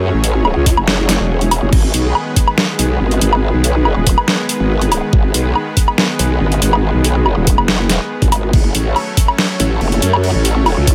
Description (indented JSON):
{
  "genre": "heavy wobble dubstep",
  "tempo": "141 BPM",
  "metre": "4/4",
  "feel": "half-time",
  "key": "G# phrygian",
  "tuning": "A4 = 440 Hz",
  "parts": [
    { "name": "supersaw pad", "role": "sustained chords", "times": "0.0-10.9 s", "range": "D#3 to C#5", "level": "-23 LUFS", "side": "equal", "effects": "sidechain pumping" },
    { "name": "growl bass", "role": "bass", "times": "0.0-10.9 s", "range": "D#1 to F#2", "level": "-17 LUFS", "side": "equal", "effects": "chorus, overdrive" },
    { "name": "dubstep drum kit", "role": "drums", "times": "0.2-10.9 s", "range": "crash cymbal, hi-hat, snare drum, woodblock", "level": "-19 LUFS", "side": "equal", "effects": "overdrive" },
    { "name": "electronic kick drum", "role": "drums", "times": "0.7-10.9 s", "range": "none", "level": "-15 LUFS", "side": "equal", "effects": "overdrive" }
  ],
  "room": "little or no reverb",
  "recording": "none",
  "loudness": "-14 LUFS",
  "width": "mono",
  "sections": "0.0-10.9 A section",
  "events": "kick drops out 1.3-1.7",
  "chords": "0.0 F#m; 1.7 G#m; 8.5 F#m"
}